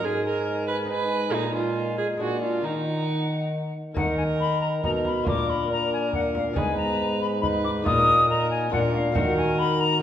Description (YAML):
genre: classical, renaissance-style consort dance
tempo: 139 BPM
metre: 3/4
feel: straight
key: Eb harmonic minor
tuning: A4 = 440 Hz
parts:
  - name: silver concert flute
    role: melody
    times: 0.0-10.0 s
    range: F5 to Eb6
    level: -27 LUFS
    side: left 3 dB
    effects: none
  - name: warm viola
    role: second line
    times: 0.0-10.0 s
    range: Eb4 to Cb5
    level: -29 LUFS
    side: right 4 dB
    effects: none
  - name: dark bassoon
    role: accompaniment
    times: 0.0-10.0 s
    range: D4 to Gb4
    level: -30 LUFS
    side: left 2 dB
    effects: none
  - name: lute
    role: accompaniment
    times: 0.0-10.0 s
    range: Ab2 to Ab4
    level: -31 LUFS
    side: left 2 dB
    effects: none
  - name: mellow trombone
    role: bass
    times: 0.0-10.0 s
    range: Ab2 to Eb3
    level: -28 LUFS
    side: right 1 dB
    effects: none
  - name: frame drum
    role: percussion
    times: 4.0-9.4 s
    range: none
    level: -31 LUFS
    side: right 1 dB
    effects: none
room: wet recital hall reverb, RT60 1.4 s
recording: recorded in a church or concert hall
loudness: -22 LUFS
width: side -10 dB against mid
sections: 0.0-4.0 A section; 4.0-10.0 A section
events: none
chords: 0.0 Abm; 1.3 Bb7sus4; 2.2 Bb7; 2.6 Ebm; 4.0 Eb5; 5.3 Bb; 6.6 Abm; 7.9 Bbsus4; 8.7 Bb; 9.2 Ebm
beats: | 0.03 0.47 0.90 | 1.33 1.77 2.20 | 2.64 3.08 3.53 | 3.97 4.40 4.84 | 5.27 5.70 6.13 | 6.56 7.00 7.43 | 7.86 8.29 8.72 | 9.16 9.59 10.02